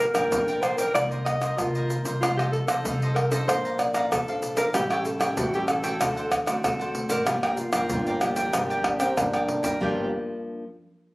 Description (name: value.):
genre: samba and choro.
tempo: 95 BPM.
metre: 4/4.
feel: straight.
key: G minor.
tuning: A4 = 440 Hz.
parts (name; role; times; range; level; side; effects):
mellow alto saxophone; melody; 0.0-10.1 s; F4 to Eb5; -28 LUFS; equal; none.
cavaquinho; accompaniment; 0.0-10.1 s; D4 to Bb5; -30 LUFS; right 1 dB; none.
nylon-string guitar; accompaniment; 0.0-10.6 s; G2 to C5; -34 LUFS; left 1 dB; none.
upright bass; bass; 0.0-10.1 s; G1 to D2; -32 LUFS; equal; none.
egg shaker, pandeiro, tamborim and surdo; percussion; 0.0-10.0 s; none; -27 LUFS; equal; none.
breathy trombone; second line; 8.9-10.1 s; C4 to D4; -28 LUFS; equal; none.
room: moderate large studio reverb, RT60 1.1 s.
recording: recorded on a phone in the room, club ambience.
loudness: -23 LUFS.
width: side -22 dB against mid.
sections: 0.0-9.8 A section; 9.8-11.1 B section.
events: drum fill 9.3-9.8.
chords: 0.0 Gm7; 1.0 Cm9; 2.2 F7/C; 3.5 Bbmaj9; 4.8 A7; 6.0 D7; 7.3 Gm7.